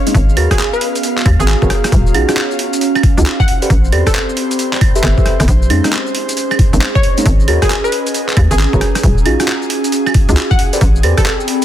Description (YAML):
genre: UK garage, two-step garage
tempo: 135 BPM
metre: 4/4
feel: swing 64% on 16ths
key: unclear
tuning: A4 = 439 Hz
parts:
  - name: airy breathy pad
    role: sustained chords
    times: 0.0-11.6 s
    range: Ab4 to F5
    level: -26 LUFS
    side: equal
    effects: chorus, sidechain pumping
  - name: warbly tape-like pad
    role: texture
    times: 0.0-11.6 s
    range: Cb4 to C6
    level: -21 LUFS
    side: right 1 dB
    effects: chorus, built-in reverb, sidechain pumping
  - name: deep mellow chord stab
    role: stabs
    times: 0.1-11.2 s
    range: Ab3 to E5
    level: -20 LUFS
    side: equal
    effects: chorus, dub echo
  - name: hollow knocking FM bass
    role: bass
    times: 0.1-11.1 s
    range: Eb1 to F2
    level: -12 LUFS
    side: equal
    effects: sidechain pumping
  - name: boom bap sampler-style drum kit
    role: drums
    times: 0.1-11.6 s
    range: claves, handclaps, hi-hat, rim click, shaker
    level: -19 LUFS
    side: right 2 dB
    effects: overdrive
  - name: electronic kick drum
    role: drums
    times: 0.1-11.2 s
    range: none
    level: -13 LUFS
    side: equal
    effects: overdrive
  - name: glassy wavetable pluck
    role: melody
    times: 0.5-4.2, 7.0-11.3 s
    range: Ab4 to Gb5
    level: -22 LUFS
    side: equal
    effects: chorus, dub echo
room: light reverb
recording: dense, heavily limited modern master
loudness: -11 LUFS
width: side -11 dB against mid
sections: 0.0-11.6 A section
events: none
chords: 0.1 Abm11; 1.9 Ebm11; 3.5 Am11; 5.5 Bbm11; 7.3 Abm11; 9.0 Ebm11; 10.6 Am11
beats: | 0.14 0.59 1.03 1.48 | 1.92 2.37 2.81 3.26 | 3.70 4.14 4.59 5.03 | 5.48 5.92 6.37 6.81 | 7.26 7.70 8.14 8.59 | 9.03 9.48 9.92 10.37 | 10.81 11.26